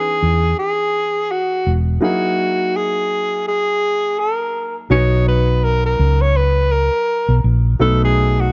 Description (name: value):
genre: lush 1970s-style soul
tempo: 83 BPM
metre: 4/4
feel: swing 58% on 16ths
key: B major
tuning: A4 = 440 Hz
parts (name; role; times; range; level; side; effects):
- breathy alto saxophone; melody; 0.0-8.5 s; F#4 to C#5; -20 LUFS; equal; none
- warm baby grand piano; accompaniment; 0.0-8.5 s; E3 to B4; -25 LUFS; equal; none
- hollow-body short-scale fingered electric bass; bass; 0.2-8.5 s; E1 to E2; -17 LUFS; equal; none
room: light reverb, studio reverb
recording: dark, warm production, nothing above 7.5 kHz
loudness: -17 LUFS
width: mono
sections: 0.0-4.9 A section; 4.9-8.5 B section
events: none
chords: 0.0 C#m9; 2.0 F#13; 4.9 Bmaj7; 7.8 B7